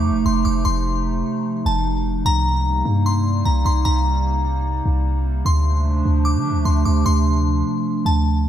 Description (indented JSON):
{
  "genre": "hip hop, atmospheric cloud-rap",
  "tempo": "150 BPM",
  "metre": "4/4",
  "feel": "half-time",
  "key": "C dorian",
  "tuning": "A4 = 441 Hz",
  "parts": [
    { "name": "glassy synth bell", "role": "melody", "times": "0.0-8.2 s", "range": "A5 to D6", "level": "-25 LUFS", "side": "left 2 dB", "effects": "chorus, ping-pong delay" },
    { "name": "warbly tape-like pad", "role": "sustained chords", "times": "0.0-8.5 s", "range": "C3 to Eb4", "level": "-22 LUFS", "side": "right 2 dB", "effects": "chorus, built-in reverb" },
    { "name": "clean 808-style bass", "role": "bass", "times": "0.0-8.5 s", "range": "F1 to D3", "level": "-19 LUFS", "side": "equal", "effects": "none" }
  ],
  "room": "light reverb",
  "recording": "none",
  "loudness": "-17 LUFS",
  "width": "side -10 dB against mid",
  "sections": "0.0-8.5 A section",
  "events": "none",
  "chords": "0.0 F7; 2.3 Cm7; 5.5 Dm7"
}